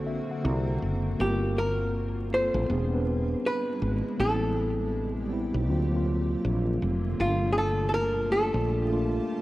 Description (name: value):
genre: lo-fi hip hop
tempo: 80 BPM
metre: 4/4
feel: swing 59% on 16ths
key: G dorian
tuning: A4 = 437 Hz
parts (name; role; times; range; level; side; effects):
- tine electric piano; second line; 0.0-1.0 s; A4; -43 LUFS; left 2 dB; none
- mellow tine electric piano; accompaniment; 0.0-9.4 s; D3 to Bb5; -30 LUFS; equal; medium stereo tremolo
- granular cloud pad; sustained chords; 0.0-9.4 s; C3 to A5; -38 LUFS; equal; built-in reverb
- woody fretless electric bass; bass; 0.0-9.2 s; E1 to D2; -28 LUFS; equal; none
- archtop guitar, miked and amplified; melody; 1.2-9.4 s; F4 to C5; -29 LUFS; equal; none
room: light reverb, digital ambience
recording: worn, warbling old tape, cassette tape, vinyl crackle, warbly pitch drift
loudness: -25 LUFS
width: side -17 dB against mid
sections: 0.0-9.4 A section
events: none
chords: 0.0 D7b13; 1.2 Gm11; 2.7 E7b13; 4.2 Am9; 5.7 D7alt; 7.2 Gm9